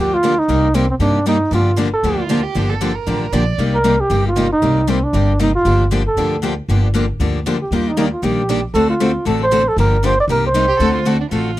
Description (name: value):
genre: acoustic string swing (jazz manouche)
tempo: 233 BPM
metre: 4/4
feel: swing 56% on 8ths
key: G minor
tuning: A4 = 441 Hz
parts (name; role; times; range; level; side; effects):
- breathy flugelhorn; melody; 0.0-11.2 s; C4 to D5; -17 LUFS; right 1 dB; none
- picked steel-string acoustic guitar; accompaniment; 0.0-11.6 s; C3 to A4; -20 LUFS; left 5 dB; none
- picked steel-string acoustic guitar; accompaniment; 0.0-11.5 s; C3 to A4; -24 LUFS; right 6 dB; none
- upright bass; bass; 0.0-11.6 s; G1 to G2; -19 LUFS; equal; none
- warm violin; second line; 2.2-3.7, 10.7-11.6 s; D4 to D5; -24 LUFS; right 7 dB; none
room: light reverb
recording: dry, close 1970s-style studio recording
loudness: -14 LUFS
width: side -15 dB against mid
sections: 0.0-11.6 A section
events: none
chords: 0.5 Cm9; 1.5 Gm9; 3.6 Cm7; 5.7 Gm7; 7.7 Ebmaj7; 8.7 D7#9; 9.8 Gm7; 10.3 Cm7; 10.8 D7#9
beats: 0.23 | 0.49 0.75 1.00 1.26 | 1.52 1.78 2.04 2.29 | 2.55 2.81 3.07 3.33 | 3.59 3.84 4.10 4.36 | 4.62 4.88 5.14 5.39 | 5.65 5.91 6.17 6.43 | 6.69 6.94 7.20 7.46 | 7.72 7.98 8.23 8.49 | 8.75 9.01 9.26 9.52 | 9.78 10.04 10.29 10.55 | 10.81 11.06 11.32 11.58